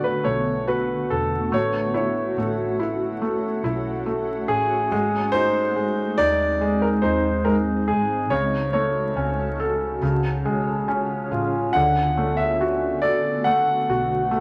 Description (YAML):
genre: pop ballad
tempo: 70 BPM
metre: 4/4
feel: straight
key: unclear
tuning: A4 = 440 Hz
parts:
  - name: clear concert grand piano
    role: melody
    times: 0.0-14.4 s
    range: G#4 to F#5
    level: -25 LUFS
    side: equal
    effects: none
  - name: felt-muted upright piano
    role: accompaniment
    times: 0.0-14.4 s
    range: C#3 to A4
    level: -27 LUFS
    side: equal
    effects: none
  - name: shimmering ambient pad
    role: sustained chords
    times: 0.0-14.4 s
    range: C#3 to A4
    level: -30 LUFS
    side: equal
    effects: chorus, built-in reverb
  - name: vintage muted fingered electric bass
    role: bass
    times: 0.0-14.4 s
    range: E1 to D#2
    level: -34 LUFS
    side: equal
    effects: none
room: wet studio reverb, RT60 0.5 s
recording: vinyl crackle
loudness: -22 LUFS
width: mono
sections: 0.0-14.4 A section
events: none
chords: 0.0 D6; 1.5 A6; 4.9 G#; 8.3 F#m/C#; 10.0 C#; 11.7 D6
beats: 0.68 | 1.53 2.37 3.22 4.07 | 4.91 5.76 6.61 7.46 | 8.31 9.16 10.02 10.88 | 11.74 12.60 13.46 14.32